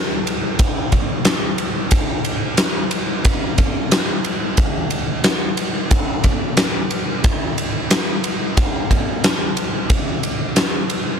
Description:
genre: rock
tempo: 90 BPM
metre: 4/4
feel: straight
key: none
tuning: none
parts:
  - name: huge arena drum kit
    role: drums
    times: 0.3-11.1 s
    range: kick drum, ride cymbal, snare drum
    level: -16 LUFS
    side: equal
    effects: none
room: little or no reverb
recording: dark, warm production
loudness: -16 LUFS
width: side -7 dB against mid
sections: 0.0-11.2 A section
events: none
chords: none

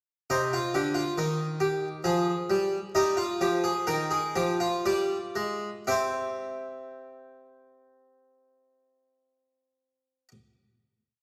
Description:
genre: classical, baroque-style 3-part fugue for harpsichord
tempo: 56-71 BPM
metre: 3/4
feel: straight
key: unclear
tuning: A4 = 440 Hz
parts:
  - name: harpsichord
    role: solo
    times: 0.3-10.3 s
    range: C3 to G5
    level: -28 LUFS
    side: equal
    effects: none
room: wet recital hall reverb, RT60 1.8 s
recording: recorded in a church or concert hall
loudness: -28 LUFS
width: mono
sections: 0.3-5.9 exposition; 5.9-9.1 final chord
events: slowing down 0.3-7.5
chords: 0.3 Cm; 2.0 Fm; 2.9 Ebadd9; 4.8 G5; 5.9 C

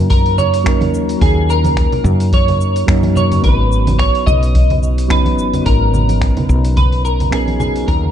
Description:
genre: sunset chillout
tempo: 108 BPM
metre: 4/4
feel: swing 56% on 16ths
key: G# minor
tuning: A4 = 444 Hz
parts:
  - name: clean electric guitar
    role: melody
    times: 0.0-8.1 s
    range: G#4 to D#5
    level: -19 LUFS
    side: right 1 dB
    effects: analog chorus, tape echo
  - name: soft electric-piano-like synth keys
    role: accompaniment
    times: 0.0-8.1 s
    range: F#3 to B4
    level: -20 LUFS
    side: moving between left 3 dB and right 5 dB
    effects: chorus, auto-pan, tape echo
  - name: woody fretless electric bass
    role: bass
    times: 0.0-8.1 s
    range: G#1 to F#2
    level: -15 LUFS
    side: equal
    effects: tube saturation
  - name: dusty soul sampler-style drum kit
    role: drums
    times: 0.1-8.1 s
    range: congas, finger snaps, hi-hat, shaker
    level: -23 LUFS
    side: right 2 dB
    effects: overdrive, studio ambience
  - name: electronic kick drum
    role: drums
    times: 0.1-8.0 s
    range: none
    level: -16 LUFS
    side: equal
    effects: studio ambience
  - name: congas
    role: percussion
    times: 0.1-7.7 s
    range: none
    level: -25 LUFS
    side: right 1 dB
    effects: none
room: light reverb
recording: dark, warm production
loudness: -11 LUFS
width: side -10 dB against mid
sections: 0.0-8.1 A section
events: fade-out 6.4-8.1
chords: 0.0 D#m7; 3.4 G#m11

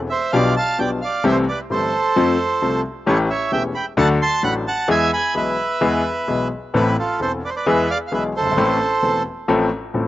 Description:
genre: tango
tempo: 131 BPM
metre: 4/4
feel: rubato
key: A harmonic minor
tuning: A4 = 441 Hz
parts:
  - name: clear concert grand piano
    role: accompaniment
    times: 0.0-10.1 s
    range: E1 to A4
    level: -19 LUFS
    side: left 2 dB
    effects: slapback echo
  - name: bandoneon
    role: melody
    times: 0.1-9.2 s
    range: E4 to C6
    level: -20 LUFS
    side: right 3 dB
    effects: slapback echo
room: little or no reverb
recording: recorded outdoors, with no room sound, nothing above 7.8 kHz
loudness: -17 LUFS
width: side -14 dB against mid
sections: 0.0-10.1 A section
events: none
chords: 0.3 G7/B; 1.2 C6; 2.2 F; 3.1 A7; 4.0 D; 4.9 E; 6.7 Amadd9; 7.7 E; 8.6 Am; 9.5 F/A

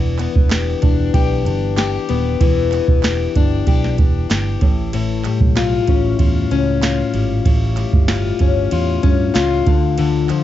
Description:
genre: indie pop, bedroom pop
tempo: 95 BPM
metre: 4/4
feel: straight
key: unclear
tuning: A4 = 440 Hz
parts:
  - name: picked plugged-in steel-string acoustic guitar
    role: accompaniment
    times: 0.0-10.4 s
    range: A2 to G4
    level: -18 LUFS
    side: left 7 dB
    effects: lush chorus, warbly pitch drift
  - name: vintage muted fingered electric bass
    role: bass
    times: 0.0-10.3 s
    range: Eb1 to G2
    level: -20 LUFS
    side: right 2 dB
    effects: none
  - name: soft vintage rhythm box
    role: drums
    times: 0.2-10.4 s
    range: kick drum, ride cymbal, snare drum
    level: -17 LUFS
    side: right 2 dB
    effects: vintage 12-bit sampler grit, cassette tape
  - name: group handclap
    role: percussion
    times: 0.2-10.4 s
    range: none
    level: -34 LUFS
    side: right 12 dB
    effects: none
room: little or no reverb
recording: home recording on cassette, nothing above 7.8 kHz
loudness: -14 LUFS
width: side -12 dB against mid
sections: 0.0-10.4 A section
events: none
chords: 0.0 Em7; 4.6 A7b13; 9.7 Dm

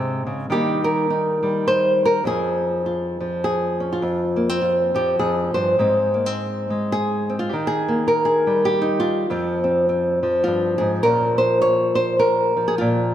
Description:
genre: folk, solo fingerstyle acoustic guitar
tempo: 103 BPM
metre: 3/4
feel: swing 59% on 8ths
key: unclear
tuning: A4 = 442 Hz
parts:
  - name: nylon-string guitar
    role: solo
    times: 0.0-13.1 s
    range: F2 to Db5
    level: -18 LUFS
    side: equal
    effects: none
room: moderate concert hall reverb, RT60 2.2 s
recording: lossy compression artefacts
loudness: -18 LUFS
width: side -11 dB against mid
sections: 0.0-11.0 A section; 11.0-13.1 B section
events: none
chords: 0.0 Ab; 0.5 Eb; 2.3 Db/F; 4.0 F5; 5.8 Ab; 7.5 Eb; 9.3 Fm; 11.0 Bbm

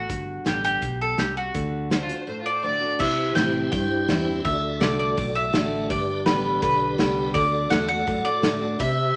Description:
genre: honky-tonk and classic country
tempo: 166 BPM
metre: 4/4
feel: straight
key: unclear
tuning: A4 = 439 Hz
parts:
  - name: mandolin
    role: melody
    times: 0.0-9.1 s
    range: F#4 to G5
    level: -28 LUFS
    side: equal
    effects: none
  - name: picked steel-string acoustic guitar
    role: accompaniment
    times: 0.0-9.2 s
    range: G2 to G4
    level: -31 LUFS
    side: equal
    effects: none
  - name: vintage muted fingered electric bass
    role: bass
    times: 0.0-9.2 s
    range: G1 to C3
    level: -34 LUFS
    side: equal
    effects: none
  - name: natural country drum kit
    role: drums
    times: 0.1-8.9 s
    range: crash cymbal, hi-hat, kick drum, snare drum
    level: -29 LUFS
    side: equal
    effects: none
  - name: clear fiddle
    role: second line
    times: 1.9-2.9 s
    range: F4 to D5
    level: -30 LUFS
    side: equal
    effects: none
  - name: tonewheel organ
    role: accompaniment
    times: 3.0-9.2 s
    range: E4 to E5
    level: -31 LUFS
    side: equal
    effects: slow rotary speaker, overdrive, chorus vibrato
room: wet studio reverb, RT60 0.8 s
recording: none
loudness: -24 LUFS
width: mono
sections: 0.0-3.0 A section; 3.0-9.2 B section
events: none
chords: 0.1 G; 1.6 D; 3.0 C; 4.5 D; 5.9 Gadd9; 7.3 D

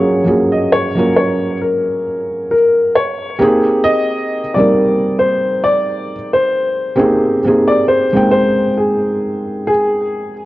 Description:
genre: hip hop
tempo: 67 BPM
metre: 4/4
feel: swing 57% on 16ths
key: unclear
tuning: A4 = 439 Hz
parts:
  - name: warm upright piano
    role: melody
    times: 0.0-10.3 s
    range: G#4 to D#5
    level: -15 LUFS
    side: left 1 dB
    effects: low-pass filter
  - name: felt-muted upright piano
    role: accompaniment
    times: 0.0-10.5 s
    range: F#3 to G5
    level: -15 LUFS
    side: right 1 dB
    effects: low-pass filter
room: wet spring reverb, RT60 2.1 s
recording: worn, warbling old tape, cassette tape, warbly pitch drift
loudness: -12 LUFS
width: side -17 dB against mid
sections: 0.0-10.5 A section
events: none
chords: 0.0 F#maj9; 3.4 G#maj9

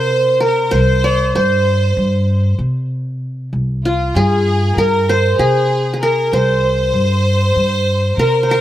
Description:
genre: turkish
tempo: 193 BPM (eighths)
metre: 9/8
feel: straight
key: C makam ussak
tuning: A4 = 437 Hz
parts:
  - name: qanun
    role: melody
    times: 0.0-8.6 s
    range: F4 to D5-30c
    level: -16 LUFS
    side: equal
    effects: slapback echo
  - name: clear studio violin section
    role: second line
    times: 0.0-8.6 s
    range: F4 to C5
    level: -20 LUFS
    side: equal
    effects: none
  - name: upright bass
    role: bass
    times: 0.0-8.6 s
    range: C2 to C3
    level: -16 LUFS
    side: equal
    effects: none
room: little or no reverb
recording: recorded outdoors, with no room sound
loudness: -13 LUFS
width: side -12 dB against mid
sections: 0.0-8.6 A section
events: none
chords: none

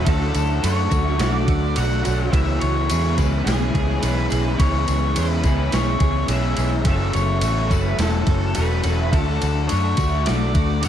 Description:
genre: rock, shoegaze and dream pop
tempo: 106 BPM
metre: 4/4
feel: straight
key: unclear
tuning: A4 = 440 Hz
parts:
  - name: octave-fuzz lead guitar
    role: melody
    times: 0.0-10.9 s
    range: G#4 to F#5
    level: -27 LUFS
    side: left 2 dB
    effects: distortion, slapback echo
  - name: picked twelve-string acoustic guitar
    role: arpeggios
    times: 0.0-10.9 s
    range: E3 to G#4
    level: -33 LUFS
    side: right 8 dB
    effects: ensemble chorus, slapback echo
  - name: crunchy overdriven guitar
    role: riff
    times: 0.0-10.9 s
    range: F#2 to F#4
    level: -26 LUFS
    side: left 12 dB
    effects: wide subtle chorus
  - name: electric guitar through a small old amp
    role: riff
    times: 0.0-10.9 s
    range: F#2 to A4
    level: -27 LUFS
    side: right 11 dB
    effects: reverse reverb
  - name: vintage muted fingered electric bass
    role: bass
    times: 0.0-10.9 s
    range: E1 to F#2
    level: -21 LUFS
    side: equal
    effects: none
  - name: gated 80s digital drum machine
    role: drums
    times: 0.1-10.9 s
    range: kick drum, ride cymbal, snare drum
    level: -24 LUFS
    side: equal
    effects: gated reverb, gated reverb snare, overdrive
  - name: tambourine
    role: percussion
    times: 0.4-10.9 s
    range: none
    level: -38 LUFS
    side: left 12 dB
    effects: none
room: digital ambience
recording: dark, warm production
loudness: -18 LUFS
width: side -10 dB against mid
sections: 0.0-10.9 A section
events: none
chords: 0.1 Dmaj7; 2.3 C#m7; 6.9 F#m7; 9.1 Dmaj7

